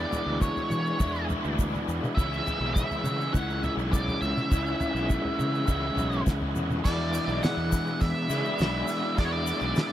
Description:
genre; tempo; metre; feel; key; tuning
psychedelic rock; 103 BPM; 4/4; straight; E mixolydian; A4 = 440 Hz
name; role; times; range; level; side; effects
octave-fuzz lead guitar; melody; 0.0-9.9 s; C#5 to F#5; -32 LUFS; right 2 dB; wah, distortion, tape echo
combo organ; sustained chords; 0.0-9.9 s; B3 to F#5; -39 LUFS; right 10 dB; none
raw garage guitar; riff; 0.0-9.9 s; E2 to E4; -29 LUFS; left 2 dB; overdrive, rotary speaker
fuzz fingered electric bass; bass; 0.0-9.7 s; B1 to E3; -32 LUFS; equal; overdrive
cloth-damped thuddy drum kit; drums; 0.1-9.9 s; crash cymbal, hi-hat, kick drum, snare drum, toms; -28 LUFS; equal; none
egg shaker; percussion; 0.1-9.9 s; none; -44 LUFS; left 26 dB; none
room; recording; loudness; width
little or no reverb; dry, close 1970s-style studio recording; -25 LUFS; side -12 dB against mid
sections
0.0-6.8 A section; 6.8-9.9 B section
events
none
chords
0.0 E7; 2.2 C#m; 6.8 E7

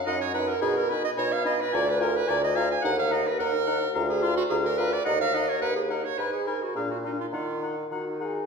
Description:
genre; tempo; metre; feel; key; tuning
quick classical-period movement for wind quintet; 108 BPM; 4/4; straight; Eb minor; A4 = 435 Hz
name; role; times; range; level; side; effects
mellow hollow concert flute; melody; 0.1-8.3 s; Bb5 to Cb6; -36 LUFS; left 7 dB; none
clear oboe; second line; 0.1-8.3 s; F5 to Ab5; -34 LUFS; left 5 dB; none
mellow French horn; accompaniment; 0.1-8.5 s; D4 to Ab4; -36 LUFS; left 1 dB; none
warm clarinet; accompaniment; 0.1-8.5 s; Eb4 to Ab5; -27 LUFS; right 3 dB; none
warm bassoon; bass; 0.1-8.4 s; D2 to Eb3; -28 LUFS; equal; none
room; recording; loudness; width
wet recital hall reverb, RT60 1.4 s; recorded in a church or concert hall; -24 LUFS; side -5 dB against mid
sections
0.0-8.5 A section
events
none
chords
0.0 Ebm/Gb; 0.6 Abm/Cb; 1.7 Bb7/D; 2.8 Ebm; 3.9 Bb/D; 5.1 Ebm; 6.2 Abm; 6.8 Bb; 7.3 Ebm

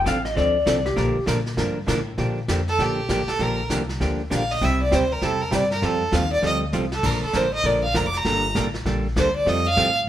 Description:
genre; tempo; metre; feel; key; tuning
country, western swing; 198 BPM; 4/4; swing 63% on 8ths; Bb major; A4 = 439 Hz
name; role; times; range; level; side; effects
clean lap steel guitar; melody; 0.0-1.2 s; G4 to F5; -22 LUFS; left 3 dB; none
hollow-body jazz guitar; accompaniment; 0.0-9.9 s; C3 to Bb4; -25 LUFS; right 1 dB; none
upright bass; bass; 0.0-10.1 s; F1 to Bb2; -26 LUFS; equal; none
vintage brush drum kit; drums; 0.1-10.1 s; brushed snare drum, crash cymbal, hi-hat, kick drum, snare drum; -30 LUFS; equal; none
clear fiddle; second line; 2.7-10.0 s; G4 to D6; -22 LUFS; right 1 dB; none
room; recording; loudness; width
moderate studio reverb, RT60 1.0 s; band playing live in one room; -20 LUFS; side -12 dB against mid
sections
0.0-2.2 A section; 2.2-10.1 A section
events
electric slide guitar solo 0.0-2.2; fiddle solo 2.2-10.1; drum fill 6.7-7.0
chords
0.0 F6; 1.0 Bb; 2.2 Bb6; 3.4 Gm7/Bb; 4.6 C; 5.8 Fadd9; 7.0 Bb; 8.3 Gmadd9; 9.5 Fadd9

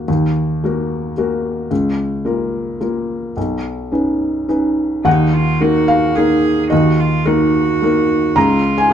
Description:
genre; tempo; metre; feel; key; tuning
neoclassical piano and strings; 109 BPM; 3/4; rubato; Eb minor; A4 = 440 Hz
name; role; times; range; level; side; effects
felt-muted upright piano; accompaniment; 0.0-8.9 s; B1 to Bb5; -14 LUFS; equal; none
rich cello; second line; 5.0-8.9 s; Eb4 to Ab4; -20 LUFS; right 6 dB; none
room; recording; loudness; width
wet studio reverb, RT60 0.6 s; dark, warm production, nothing above 10.4 kHz; -14 LUFS; side -9 dB against mid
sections
0.0-5.1 A section; 5.1-8.9 B section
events
none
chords
0.0 Ebm; 1.7 Bbm/Db; 3.4 Badd9; 5.1 Ebm; 8.4 Bbm7/Db

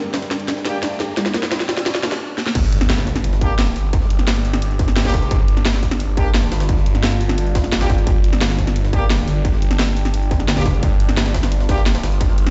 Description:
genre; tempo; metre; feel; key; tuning
dark technical drum and bass; 174 BPM; 4/4; straight; unclear; A4 = 443 Hz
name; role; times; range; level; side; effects
deep dark ambient pad; sustained chords; 0.0-12.5 s; G3 to G4; -32 LUFS; equal; chorus, built-in reverb, sidechain pumping
felt-muted upright piano; arpeggios; 0.0-2.1 s; G3 to G4; -30 LUFS; equal; sidechain pumping, low-pass filter, dub echo
riser and impact; sound effects; 0.1-3.9 s; none; -31 LUFS; equal; none
drum and bass drum kit; drums; 0.1-12.5 s; crash cymbal, hi-hat, snare drum; -24 LUFS; equal; overdrive
jungle sampler-style drum kit; drums; 0.1-12.5 s; hi-hat, snare drum; -35 LUFS; equal; overdrive, high-pass filter on snare, high-pass filter on hats
clear brass ensemble; stabs; 0.7-0.8, 3.4-11.8 s; Bb3 to G4; -30 LUFS; equal; dub echo
phased detuned saw bass; bass; 2.6-12.5 s; G1 to Ab1; -21 LUFS; equal; phaser
electronic kick drum; drums; 2.6-12.3 s; none; -22 LUFS; equal; distortion
room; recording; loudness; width
light reverb, digital ambience; played on a big sound system in a bare room, stone room reverb, nothing above 7.9 kHz; -18 LUFS; mono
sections
0.0-2.6 A section; 2.6-12.5 B section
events
build-up 0.0-2.6; drum fill 0.0-2.2, 2.4; riser 0.1-2.2; filter sweep on brass ensemble 0.0-2.6; stop 2.2-2.6; drop 2.6-12.5; impact 2.6-3.9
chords
0.0 G5

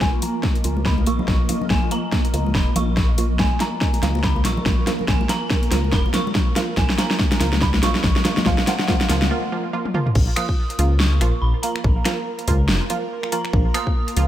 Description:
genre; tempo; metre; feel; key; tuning
deep dubstep; 142 BPM; 4/4; swing 58% on 16ths, half-time; Bb phrygian; A4 = 440 Hz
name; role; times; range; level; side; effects
dark detuned synth bell; melody; 0.0-14.3 s; F5 to Eb6; -29 LUFS; right 1 dB; chorus, phaser, low-pass filter, dub echo
granular cloud pad; sustained chords; 0.0-14.3 s; F3 to Eb5; -30 LUFS; right 1 dB; built-in reverb
dark detuned saw bass; bass; 0.0-14.3 s; F1 to Db2; -21 LUFS; equal; none
dubstep drum kit; drums; 0.0-14.3 s; crash cymbal, finger snaps, hi-hat, snare drum, toms; -23 LUFS; equal; none
electronic kick drum; drums; 0.0-13.9 s; none; -21 LUFS; equal; none
congas; percussion; 0.0-9.3 s; none; -28 LUFS; left 3 dB; none
flickering grainy texture; texture; 0.0-9.3 s; Bb3; -32 LUFS; right 3 dB; built-in reverb
filtered dub chord stab; stabs; 0.2-14.3 s; F3 to F4; -28 LUFS; right 3 dB; chorus, vintage 12-bit sampler grit, dub echo
room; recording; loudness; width
light reverb, digital ambience; none; -17 LUFS; side -12 dB against mid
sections
0.0-10.2 A section; 10.2-14.3 B section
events
build-up 0.0-10.2; drum fill 0.0-9.3, 9.8-10.2; filter sweep on synth stab 0.0-10.2; filter sweep on synth bell 0.0-10.2; break 9.3-10.2; drop 10.2-14.3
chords
0.0 Bb5

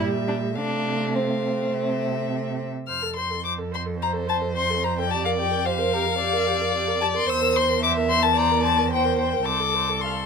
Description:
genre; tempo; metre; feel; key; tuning
quick classical-period movement for string quartet; 102-112 BPM; 4/4; rubato; F major; A4 = 439 Hz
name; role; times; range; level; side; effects
warm violin; melody; 0.0-10.3 s; E5 to F6; -24 LUFS; left 8 dB; none
dark violin; second line; 0.0-10.3 s; C4 to E5; -27 LUFS; equal; none
rich viola; accompaniment; 0.0-10.1 s; G3 to F5; -28 LUFS; right 4 dB; none
warm cello; bass; 0.0-10.3 s; C2 to C3; -28 LUFS; right 5 dB; none
room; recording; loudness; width
moderate small room reverb, RT60 0.5 s; minimal, uncompressed stereo recording; -21 LUFS; side -5 dB against mid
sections
0.0-2.9 A section; 2.9-10.3 B section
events
none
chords
0.0 Gm; 0.6 F/C; 2.9 F; 5.1 Gm7/F; 7.3 C7/E; 9.5 F/C (rootless)

